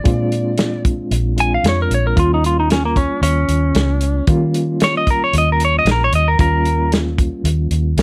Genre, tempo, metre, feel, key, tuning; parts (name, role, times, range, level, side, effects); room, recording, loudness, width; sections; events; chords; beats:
straight-eighth soul blues; 114 BPM; 4/4; straight; A4 = 440 Hz
clean lap steel guitar; melody; 0.0-6.9 s; Bb3 to Ab5; -20 LUFS; equal
overdriven reed electric piano; accompaniment; 0.0-8.0 s; G3 to F4; -26 LUFS; equal; fast tremolo
vintage muted fingered electric bass; bass; 0.1-8.0 s; Bb1 to Eb3; -20 LUFS; equal
warm soul drum kit; drums; 0.1-8.0 s; hi-hat, kick drum, snare drum; -20 LUFS; equal
little or no reverb; -16 LUFS; mono
0.0-8.0 A section
electric slide guitar solo 0.0-8.0
0.0 Bb9; 2.2 Eb9
| 0.05 0.58 1.11 1.64 | 2.16 2.69 3.22 3.75 | 4.28 4.80 5.33 5.86 | 6.39 6.92 7.45 7.97